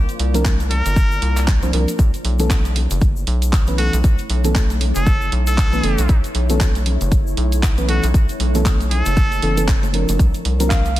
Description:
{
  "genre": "deep house",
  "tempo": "117 BPM",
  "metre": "4/4",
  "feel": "swing 58% on 16ths",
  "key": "unclear",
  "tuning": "A4 = 437 Hz",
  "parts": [
    { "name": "deep dark ambient pad", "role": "sustained chords", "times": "0.0-11.0 s", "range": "A3 to D5", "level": "-30 LUFS", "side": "equal", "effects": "chorus, built-in reverb, sidechain pumping" },
    { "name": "rubbery square bass", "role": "bass", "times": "0.0-11.0 s", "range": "F#1 to C2", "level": "-19 LUFS", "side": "equal", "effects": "sidechain pumping" },
    { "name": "house drum kit", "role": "drums", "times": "0.1-11.0 s", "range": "handclaps, hi-hat", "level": "-26 LUFS", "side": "right 2 dB", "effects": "none" },
    { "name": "egg shaker", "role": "percussion", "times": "0.1-10.9 s", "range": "none", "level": "-34 LUFS", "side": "left 6 dB", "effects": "none" },
    { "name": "mellow FM electric piano", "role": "stabs", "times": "0.3-10.8 s", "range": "E3 to C5", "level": "-24 LUFS", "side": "right 1 dB", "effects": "chorus, sidechain pumping, dub echo" },
    { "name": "congas", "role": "percussion", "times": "0.3-11.0 s", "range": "none", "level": "-30 LUFS", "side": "left 5 dB", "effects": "none" },
    { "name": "electronic kick drum", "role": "drums", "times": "0.5-10.8 s", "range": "none", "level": "-16 LUFS", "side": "equal", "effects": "none" },
    { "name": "trumpet with straight mute", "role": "melody", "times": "0.7-9.6 s", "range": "F#4 to Bb4", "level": "-26 LUFS", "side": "equal", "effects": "ping-pong delay" },
    { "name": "tine electric piano", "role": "melody", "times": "10.7-11.0 s", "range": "F5", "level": "-24 LUFS", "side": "right 2 dB", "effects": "medium stereo tremolo" }
  ],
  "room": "little or no reverb",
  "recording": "dense, heavily limited modern master",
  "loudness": "-15 LUFS",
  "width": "side -15 dB against mid",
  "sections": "0.0-11.0 A section",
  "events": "none",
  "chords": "0.0 C9sus4; 2.0 B9sus4; 10.2 C9sus4",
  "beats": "0.45 0.96 1.48 | 1.99 2.50 3.02 3.53 | 4.04 4.55 5.07 5.58 | 6.09 6.61 7.12 7.63 | 8.14 8.66 9.17 9.68 | 10.19 10.71"
}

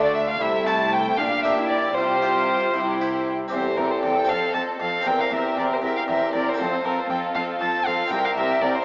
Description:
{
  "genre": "classical, baroque-style concerto movement with solo episodes",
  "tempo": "78 BPM (dotted quarters)",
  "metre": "6/8",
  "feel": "straight",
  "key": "unclear",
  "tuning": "A4 = 440 Hz",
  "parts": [
    { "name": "warm studio violin section", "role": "melody", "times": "0.0-8.8 s", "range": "D4 to A4", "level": "-28 LUFS", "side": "equal", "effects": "none" },
    { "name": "warm violin", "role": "melody", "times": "0.0-8.8 s", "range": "Bb4 to A5", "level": "-24 LUFS", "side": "equal", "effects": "none" },
    { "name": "rich studio violin section", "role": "second line", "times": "0.0-8.8 s", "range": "G4 to A5", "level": "-28 LUFS", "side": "equal", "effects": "none" },
    { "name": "harpsichord", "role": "accompaniment", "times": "0.0-8.8 s", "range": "C2 to C5", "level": "-28 LUFS", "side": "equal", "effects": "none" },
    { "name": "rich chamber viola section", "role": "accompaniment", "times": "0.0-8.8 s", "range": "A3 to F4", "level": "-28 LUFS", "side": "equal", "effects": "none" },
    { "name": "rich chamber cello section", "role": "bass", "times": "0.0-8.7 s", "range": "C2 to D3", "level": "-33 LUFS", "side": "equal", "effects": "none" },
    { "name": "warm studio double bass section", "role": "bass", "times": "0.0-3.5 s", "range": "Bb1 to D2", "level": "-37 LUFS", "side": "equal", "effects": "none" }
  ],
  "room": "wet recital hall reverb, RT60 1.7 s",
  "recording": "vinyl crackle, AM radio sound",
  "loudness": "-20 LUFS",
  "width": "side -29 dB against mid",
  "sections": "0.0-3.5 A section; 3.5-8.8 A section",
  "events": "none",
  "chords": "0.4 Am/C; 1.2 Gm/Bb; 2.0 Csus4; 2.7 C; 3.5 C/E; 4.3 F; 5.1 C7/E; 6.6 F; 8.1 C5",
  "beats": "| 0.41 1.18 | 1.96 2.74 | 3.52 4.29 | 5.06 5.83 | 6.59 7.36 | 8.12"
}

